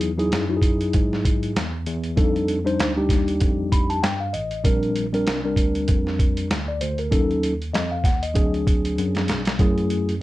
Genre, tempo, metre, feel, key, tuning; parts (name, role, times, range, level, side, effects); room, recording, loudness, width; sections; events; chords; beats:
hip hop, jazz-hop; 97 BPM; 4/4; swing 57% on 16ths; A4 = 440 Hz
mellow tine electric piano; accompaniment; 0.0-10.1 s; F#3 to B5; -23 LUFS; left 1 dB; slow stereo tremolo
tine electric piano; bass; 0.0-10.2 s; A1 to G#2; -27 LUFS; equal; overdrive, medium stereo tremolo
boom bap sampler-style drum kit; drums; 0.0-10.2 s; hi-hat, kick drum, snare drum; -22 LUFS; equal
light reverb; -19 LUFS; side -17 dB against mid
0.0-9.6 A section
tine electric piano fill 3.4-4.6; drum fill 9.0-9.6
0.0 Emaj9; 2.2 F13; 4.6 A#69; 7.1 D#m7b5; 8.4 D7#11; 9.6 F#m9
0.32 0.93 1.55 | 2.17 2.79 3.41 4.03 | 4.64 5.26 5.88 6.50 | 7.12 7.74 8.36 8.97 | 9.59